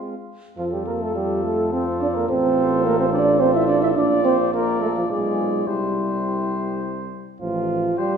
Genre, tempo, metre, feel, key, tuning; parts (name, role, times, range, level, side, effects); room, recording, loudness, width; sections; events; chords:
classical, brass quintet; 105 BPM; 3/4; rubato; F major; A4 = 437 Hz
dark trumpet; second line; 0.0-8.2 s; F4 to E5; -28 LUFS; right 3 dB
clear French horn; accompaniment; 0.0-8.1 s; C4 to F4; -27 LUFS; left 1 dB
warm euphonium; accompaniment; 0.0-8.2 s; F3 to E4; -21 LUFS; right 2 dB
warm cornet; melody; 0.6-8.1 s; A4 to D5; -30 LUFS; left 4 dB
warm tuba; bass; 0.6-7.9 s; A1 to F2; -28 LUFS; right 2 dB
wet scoring stage reverb, RT60 1.8 s; recorded in a church or concert hall; -18 LUFS; side -7 dB against mid
0.6-8.2 A section
0.0 Fm; 0.6 F; 2.3 F/A; 4.0 Bb; 5.1 Bdim7; 5.7 C; 7.4 F/A